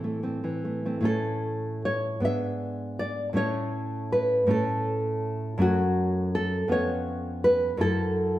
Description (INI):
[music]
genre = romantic piece for solo classical guitar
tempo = 53 BPM (dotted quarters)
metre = 6/8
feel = uneven beats, rubato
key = A major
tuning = A4 = 440 Hz
[part]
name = nylon-string guitar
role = solo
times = 0.0-8.4 s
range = E#2 to E5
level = -24 LUFS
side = equal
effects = none
[sound]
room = wet stone room reverb, RT60 1.3 s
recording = band playing live in one room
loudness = -24 LUFS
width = side -14 dB against mid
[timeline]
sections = 0.0-1.1 A section; 1.1-8.4 B section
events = none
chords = 0.0 Am; 1.1 A; 2.2 E7/G#; 3.4 A; 5.6 F#m; 6.7 C#7/E#; 7.8 F#m7